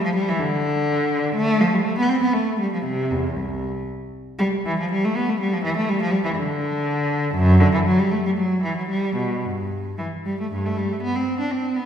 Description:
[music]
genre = classical, baroque-style suite movement for unaccompanied cello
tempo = 109-125 BPM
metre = 3/4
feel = rubato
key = G major from 7.3 s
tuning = A4 = 440 Hz
[part]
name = warm cello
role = solo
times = 0.0-11.9 s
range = C2 to D4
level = -20 LUFS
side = equal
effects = none
[sound]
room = wet recital hall reverb, RT60 1.5 s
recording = recorded in a church or concert hall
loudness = -19 LUFS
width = side -8 dB against mid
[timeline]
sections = 0.0-10.5 A section; 10.5-11.9 B section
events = none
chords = none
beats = 0.38 0.86 | 1.35 1.83 2.33 | 2.85 3.37 3.88 | 4.39 4.90 5.39 | 5.88 6.36 6.85 | 7.35 7.85 8.37 | 8.90 9.45 9.98 | 10.52 11.03 11.52

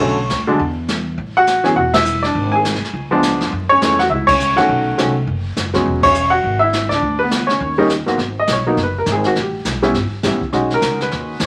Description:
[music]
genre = jazz piano trio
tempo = 205 BPM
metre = 4/4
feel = swing 60% on 8ths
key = G# minor from 8.2 s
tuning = A4 = 440 Hz
[part]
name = clear upright piano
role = melody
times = 0.0-11.4 s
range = G#2 to G#5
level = -17 LUFS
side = equal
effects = none
[part]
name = upright bass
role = bass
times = 0.0-11.5 s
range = E1 to F#2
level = -26 LUFS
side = equal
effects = none
[part]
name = jazz brush drum kit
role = drums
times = 0.0-11.5 s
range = brushed snare drum, crash cymbal, hi-hat, kick drum, ride cymbal, snare drum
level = -26 LUFS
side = equal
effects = none
[sound]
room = moderate studio reverb, RT60 0.7 s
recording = vinyl crackle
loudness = -17 LUFS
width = mono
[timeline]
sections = 0.0-8.2 A section; 8.2-11.5 B section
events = band accent 1.9, 4.2, 6.0; upright piano solo 8.2-11.5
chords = 0.0 Bm9; 0.6 N.C.; 1.2 A5; 2.3 N.C.; 2.9 C#7b9; 3.5 F#m7; 4.7 B9; 5.9 E69; 7.0 Bmadd9/D; 7.6 D#7(no3); 8.2 G#m7; 9.4 A9; 10.5 B6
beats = | 0.01 0.30 0.59 0.89 | 1.18 1.47 1.76 2.06 | 2.35 2.64 2.93 3.23 | 3.52 3.81 4.10 4.39 | 4.69 4.98 5.27 5.56 | 5.86 6.15 6.44 6.73 | 7.02 7.32 7.61 7.90 | 8.19 8.48 8.78 9.07 | 9.36 9.65 9.95 10.24 | 10.53 10.82 11.11 11.41

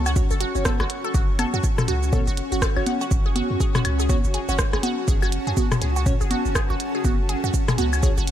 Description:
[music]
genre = minimal techno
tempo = 122 BPM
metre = 4/4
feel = swing 60% on 16ths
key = F# minor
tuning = A4 = 440 Hz
[part]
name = punchy sub bass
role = bass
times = 0.0-8.3 s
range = F#1 to F#2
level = -25 LUFS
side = equal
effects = sidechain pumping
[part]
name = granular cloud pad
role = texture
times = 0.0-8.3 s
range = C#4 to C#6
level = -29 LUFS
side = equal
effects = built-in reverb, sidechain pumping
[part]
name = resonant blip pluck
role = riff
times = 0.1-8.2 s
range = F#4 to F#5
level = -29 LUFS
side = right 2 dB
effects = phaser, sidechain pumping, ping-pong delay
[part]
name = minimal click drum kit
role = drums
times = 0.1-8.3 s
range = hi-hat, rim click, shaker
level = -30 LUFS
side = right 2 dB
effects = none
[part]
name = booming analog drum machine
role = percussion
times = 0.1-8.0 s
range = congas, rim click, toms, woodblock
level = -26 LUFS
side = left 2 dB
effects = overdrive
[part]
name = wavetable chord stab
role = stabs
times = 0.2-8.1 s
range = C#4 to C#5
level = -33 LUFS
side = left 1 dB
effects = cassette tape, dub echo
[part]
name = electronic kick drum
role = drums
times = 0.2-8.1 s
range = none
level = -22 LUFS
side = equal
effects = none
[sound]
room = little or no reverb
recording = none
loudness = -20 LUFS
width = side -11 dB against mid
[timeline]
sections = 0.0-8.3 A section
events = none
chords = 0.0 F#5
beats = 0.16 0.65 | 1.14 1.64 2.13 2.62 | 3.11 3.60 4.09 4.59 | 5.08 5.57 6.06 6.55 | 7.05 7.54 8.03

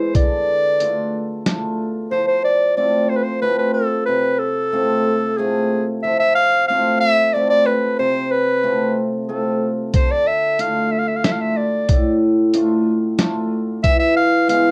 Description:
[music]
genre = klezmer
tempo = 92 BPM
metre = 3/4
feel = straight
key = unclear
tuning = A4 = 441 Hz
[part]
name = mellow clarinet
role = melody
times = 0.0-14.7 s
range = G#4 to F5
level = -20 LUFS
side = equal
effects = none
[part]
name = cimbalom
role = accompaniment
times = 0.0-14.7 s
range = A2 to F4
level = -22 LUFS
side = equal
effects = none
[part]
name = lo-fi sampler-style drum kit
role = drums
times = 0.1-1.6, 9.9-14.6 s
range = hi-hat, kick drum, snare drum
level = -20 LUFS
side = equal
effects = none
[sound]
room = moderate small room reverb, RT60 0.5 s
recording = none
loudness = -18 LUFS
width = mono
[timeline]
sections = 0.0-2.1 A section; 2.1-14.7 A section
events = none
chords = 0.2 Dm; 2.1 F; 9.9 Dm; 13.8 E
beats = | 0.15 0.81 1.46 | 2.12 2.77 3.42 | 4.08 4.73 5.38 | 6.03 6.68 7.34 | 7.99 8.64 9.29 | 9.94 10.59 11.24 | 11.89 12.54 13.19 | 13.84 14.49

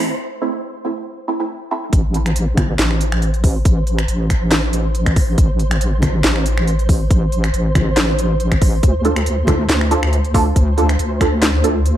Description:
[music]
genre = deep dubstep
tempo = 139 BPM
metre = 4/4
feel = swing 54% on 16ths, half-time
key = A minor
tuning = A4 = 440 Hz
[part]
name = filtered dub chord stab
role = stabs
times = 0.0-1.8, 9.1-11.7 s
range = A3 to A4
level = -21 LUFS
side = right 3 dB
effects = phaser, ensemble chorus, dub echo
[part]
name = deep soft wobble bass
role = bass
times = 0.0-12.0 s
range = A1 to D2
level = -17 LUFS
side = equal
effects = chorus
[part]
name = flickering grainy texture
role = texture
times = 0.1-12.0 s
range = C5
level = -27 LUFS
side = right 2 dB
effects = built-in reverb
[part]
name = electronic kick drum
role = drums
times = 1.9-11.3 s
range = none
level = -15 LUFS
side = equal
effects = none
[part]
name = garage drum kit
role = drums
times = 1.9-11.9 s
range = finger snaps, handclaps, hi-hat, snare drum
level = -21 LUFS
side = equal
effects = none
[part]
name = congas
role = percussion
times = 2.6-2.7, 6.0-9.6 s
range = none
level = -22 LUFS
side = equal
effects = none
[sound]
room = digital ambience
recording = dark, warm production, high-pass filter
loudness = -14 LUFS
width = side -12 dB against mid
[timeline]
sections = 0.0-1.9 A section; 1.9-12.0 B section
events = build-up 0.0-1.9; filter sweep 0.0-1.9; break 0.2-1.9; drop 1.9-12.0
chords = 0.0 Am; 8.8 Dm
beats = | 0.20 0.63 1.06 1.50 | 1.93 2.36 2.79 3.22 | 3.65 4.08 4.52 4.95 | 5.38 5.81 6.24 6.67 | 7.11 7.54 7.97 8.40 | 8.83 9.27 9.70 10.13 | 10.56 10.99 11.42 11.86

